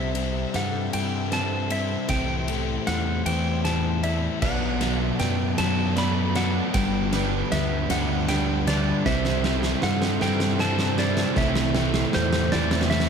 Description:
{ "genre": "post-rock", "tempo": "52 BPM (dotted quarters)", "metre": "6/8", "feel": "straight", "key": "A dorian", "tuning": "A4 = 437 Hz", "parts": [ { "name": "clean lap steel guitar", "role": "melody", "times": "0.0-13.1 s", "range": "C5 to B5", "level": "-30 LUFS", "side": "equal", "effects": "tape echo" }, { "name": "rich symphonic string section", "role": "sustained chords", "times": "0.0-13.1 s", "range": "G3 to E5", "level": "-38 LUFS", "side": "right 2 dB", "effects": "none" }, { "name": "felt-muted upright piano", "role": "arpeggios", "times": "0.0-13.1 s", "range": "A4 to E5", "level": "-37 LUFS", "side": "right 6 dB", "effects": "tape echo" }, { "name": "twangy electric guitar", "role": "arpeggios", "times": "0.0-13.1 s", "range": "G2 to E4", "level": "-36 LUFS", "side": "left 1 dB", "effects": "none" }, { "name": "crunchy overdriven guitar", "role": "riff", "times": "0.0-13.1 s", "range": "G2 to C4", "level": "-28 LUFS", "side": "left 8 dB", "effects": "none" }, { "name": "growling fingered electric bass", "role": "bass", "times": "0.0-13.1 s", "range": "G1 to G2", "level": "-27 LUFS", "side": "equal", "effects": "overdrive" }, { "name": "big rock drum kit", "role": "drums", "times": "0.1-13.1 s", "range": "crash cymbal, kick drum, ride cymbal, snare drum", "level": "-28 LUFS", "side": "right 1 dB", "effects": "none" }, { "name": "sludgy distorted guitar", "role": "riff", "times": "4.4-13.1 s", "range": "G2 to E4", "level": "-28 LUFS", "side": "right 11 dB", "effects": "overdrive" } ], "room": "moderate concert hall reverb, RT60 2.3 s", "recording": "none", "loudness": "-21 LUFS", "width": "side -6 dB against mid", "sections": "0.0-13.1 A section", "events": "build-up 0.0-13.1; drum fill 0.0-13.1", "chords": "0.0 C6; 2.1 Am7/C; 4.4 Bm7; 6.7 G; 9.1 C6" }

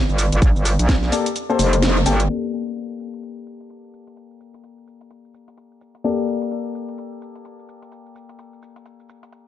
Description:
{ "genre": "bass house", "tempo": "128 BPM", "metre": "4/4", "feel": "swing 60% on 16ths", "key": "G minor", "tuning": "A4 = 444 Hz", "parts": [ { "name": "metallic wobble bass", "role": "bass", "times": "0.0-2.3 s", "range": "F1 to Bb1", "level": "-18 LUFS", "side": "equal", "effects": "chorus, overdrive, sidechain pumping" }, { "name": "garage drum kit", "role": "drums", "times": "0.1-9.4 s", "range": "hi-hat, rim click, shaker, snare drum", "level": "-24 LUFS", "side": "right 1 dB", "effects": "none" }, { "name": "electronic kick drum", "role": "drums", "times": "0.4-1.0 s", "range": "none", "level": "-16 LUFS", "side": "equal", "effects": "none" }, { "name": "dark baby grand piano", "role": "stabs", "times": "1.1-9.5 s", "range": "Bb3 to G5", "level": "-25 LUFS", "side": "left 5 dB", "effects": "sidechain pumping, low-pass filter, ping-pong delay" } ], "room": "light reverb", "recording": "low-pass filter, nothing above 11.0 kHz", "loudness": "-18 LUFS", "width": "side -12 dB against mid", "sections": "0.0-2.3 A section; 2.3-9.5 B section", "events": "kick drops out 1.4-2.3; band accent 1.8; filter sweep on grand piano 2.3-9.5; filter sweep 2.3-9.5", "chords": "0.0 Gmadd9" }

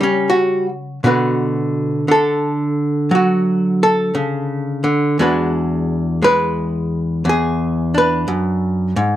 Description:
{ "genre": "solo jazz", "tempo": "58 BPM", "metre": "4/4", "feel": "swing 66% on 8ths", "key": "unclear", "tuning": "A4 = 440 Hz", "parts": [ { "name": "archtop guitar, miked and amplified", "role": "solo", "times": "0.0-9.2 s", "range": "E2 to B4", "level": "-15 LUFS", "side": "equal", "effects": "none" } ], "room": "moderate club reverb, RT60 0.6 s", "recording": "none", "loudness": "-15 LUFS", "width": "side -12 dB against mid", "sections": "0.0-9.2 A section", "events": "hollow-body jazz guitar solo 0.0-9.2", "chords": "0.0 F#5; 1.0 Bm7; 5.2 E9" }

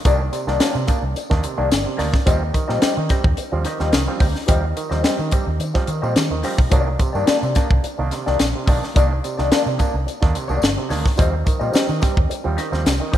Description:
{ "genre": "funk", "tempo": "108 BPM", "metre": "4/4", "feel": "straight", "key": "C minor", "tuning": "A4 = 440 Hz", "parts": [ { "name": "mellow electric guitar", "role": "accompaniment", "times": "0.1-13.2 s", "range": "Bb3 to Eb5", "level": "-26 LUFS", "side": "left 6 dB", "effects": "wah" }, { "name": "overdriven clav", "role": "stabs", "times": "0.1-13.2 s", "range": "C3 to D4", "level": "-25 LUFS", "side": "right 5 dB", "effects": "auto-wah, slapback echo" }, { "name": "vintage muted fingered electric bass", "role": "bass", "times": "0.1-13.2 s", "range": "G1 to Eb3", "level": "-22 LUFS", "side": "equal", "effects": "none" }, { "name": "tight funk drum kit", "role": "drums", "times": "0.1-13.2 s", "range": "hi-hat, kick drum, snare drum", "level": "-19 LUFS", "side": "equal", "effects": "none" }, { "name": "tambourine", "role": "percussion", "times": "0.1-13.2 s", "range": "none", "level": "-40 LUFS", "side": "left 3 dB", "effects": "none" } ], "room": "moderate lush hall reverb, RT60 2.3 s", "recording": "rough home demo mix", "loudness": "-17 LUFS", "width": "side -12 dB against mid", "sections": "0.0-13.2 A section", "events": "none", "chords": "0.0 Cm9; 2.3 Eb6; 6.7 Cm9; 11.2 Eb6" }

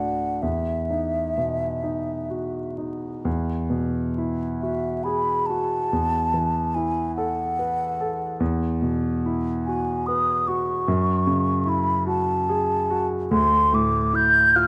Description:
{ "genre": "classical, impressionist duo for flute and grand piano", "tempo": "41-50 BPM (dotted quarters)", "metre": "6/8", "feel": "rubato", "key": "E major", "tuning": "A4 = 437 Hz", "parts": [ { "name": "mellow hollow concert flute", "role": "melody", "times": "0.0-14.7 s", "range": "E5 to G6", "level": "-25 LUFS", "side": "equal", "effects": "none" }, { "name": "warm concert grand piano", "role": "accompaniment", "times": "0.0-14.7 s", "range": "D2 to B4", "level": "-27 LUFS", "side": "equal", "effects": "none" } ], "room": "moderate recital hall reverb, RT60 1.4 s", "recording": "close, detailed microphones, vinyl crackle", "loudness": "-24 LUFS", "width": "mono", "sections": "0.0-3.3 A section; 3.3-14.7 B section", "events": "none", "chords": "0.4 Esus2; 3.3 Eadd9; 5.9 Asus2/E; 8.4 Esus2; 10.9 F#m9; 13.3 Dsus2" }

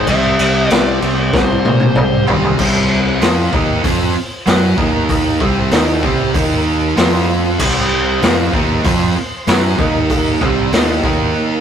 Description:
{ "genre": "hard rock", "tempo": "96 BPM", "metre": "4/4", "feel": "straight", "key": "unclear", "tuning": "A4 = 442 Hz", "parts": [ { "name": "bluesy overdriven lead guitar", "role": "melody", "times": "0.0-2.2 s", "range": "C5 to E5", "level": "-19 LUFS", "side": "left 3 dB", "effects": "distortion" }, { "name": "tonewheel organ", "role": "sustained chords", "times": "0.0-11.6 s", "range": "C4 to C6", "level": "-28 LUFS", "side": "equal", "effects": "none" }, { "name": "crunchy overdriven guitar", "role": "riff", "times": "0.0-11.6 s", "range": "C3 to F#4", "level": "-18 LUFS", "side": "right 4 dB", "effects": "none" }, { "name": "sludgy distorted guitar", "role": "riff", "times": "0.0-11.6 s", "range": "C3 to F#4", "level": "-21 LUFS", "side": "left 3 dB", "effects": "overdrive" }, { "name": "growling fingered electric bass", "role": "bass", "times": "0.0-11.3 s", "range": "C2 to Bb2", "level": "-19 LUFS", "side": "equal", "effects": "overdrive" }, { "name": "raw garage drum kit", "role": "drums", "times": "0.1-11.2 s", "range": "crash cymbal, hi-hat, kick drum, snare drum, toms", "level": "-16 LUFS", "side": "left 1 dB", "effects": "none" } ], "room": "moderate stone room reverb, RT60 1.2 s", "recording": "rough rehearsal-room recording, tube saturation", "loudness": "-12 LUFS", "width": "side -8 dB against mid", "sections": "0.0-2.6 A section; 2.6-11.6 B section", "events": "drum fill 1.3-2.6; break 11.4", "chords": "0.1 C; 2.6 C5; 4.8 Eb5; 5.4 C5; 6.4 Eb5; 7.0 F5; 7.6 C5; 9.8 Eb5; 10.4 C5; 11.0 Eb5" }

